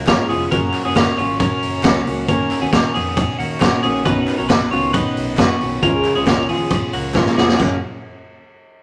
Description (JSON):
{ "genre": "jangly indie pop", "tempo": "136 BPM", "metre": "4/4", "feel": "straight", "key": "F# major", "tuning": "A4 = 439 Hz", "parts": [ { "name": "fingerpicked plugged-in steel-string acoustic guitar", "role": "accompaniment", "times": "0.0-7.8 s", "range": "B2 to F#4", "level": "-24 LUFS", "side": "equal", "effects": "none" }, { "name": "twelve-string electric guitar", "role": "arpeggios", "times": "0.0-7.8 s", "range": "A#3 to C#5", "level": "-24 LUFS", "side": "equal", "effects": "none" }, { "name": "vintage muted fingered electric bass", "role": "bass", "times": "0.0-7.8 s", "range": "E#1 to A#2", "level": "-31 LUFS", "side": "equal", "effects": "none" }, { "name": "raw garage drum kit", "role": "drums", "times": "0.1-7.7 s", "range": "crash cymbal, hi-hat, kick drum, ride cymbal, snare drum", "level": "-20 LUFS", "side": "equal", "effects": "none" }, { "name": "group handclap", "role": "percussion", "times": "0.1-7.8 s", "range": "none", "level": "-37 LUFS", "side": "equal", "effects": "none" } ], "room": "light reverb", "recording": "none", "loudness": "-17 LUFS", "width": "mono", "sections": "0.0-7.6 A section; 7.6-8.8 B section", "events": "drum fill 7.2-7.6", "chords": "0.0 C#; 0.5 F#; 2.3 D#m7; 4.1 Badd9; 5.8 C#; 7.6 F#" }